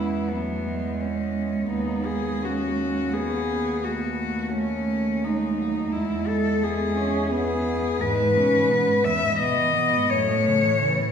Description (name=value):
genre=classical, lyrical piece for cello ensemble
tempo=86 BPM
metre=3/4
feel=rubato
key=E major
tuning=A4 = 439 Hz
part: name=warm cello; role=melody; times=0.0-11.1 s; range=B3 to E5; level=-24 LUFS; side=left 3 dB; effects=none
part: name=dark cello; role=second line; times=0.0-11.1 s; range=E2 to C#4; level=-28 LUFS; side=right 5 dB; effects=none
part: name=warm cello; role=accompaniment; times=0.0-11.1 s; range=E3 to C#4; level=-29 LUFS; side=left 1 dB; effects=none
part: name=rich cello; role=bass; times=0.0-10.7 s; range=D#2 to A2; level=-30 LUFS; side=right 2 dB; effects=none
room=wet recital hall reverb, RT60 1.6 s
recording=recorded in a church or concert hall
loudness=-21 LUFS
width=side -7 dB against mid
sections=0.0-11.1 A section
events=none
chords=0.0 E; 1.7 B/D#; 3.9 B7/D#; 5.9 E; 10.1 F#m7 (rootless)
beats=0.31 1.02 | 1.73 2.44 3.15 | 3.85 4.55 5.25 | 5.94 6.63 7.32 | 8.01 8.70 9.39 | 10.10 10.82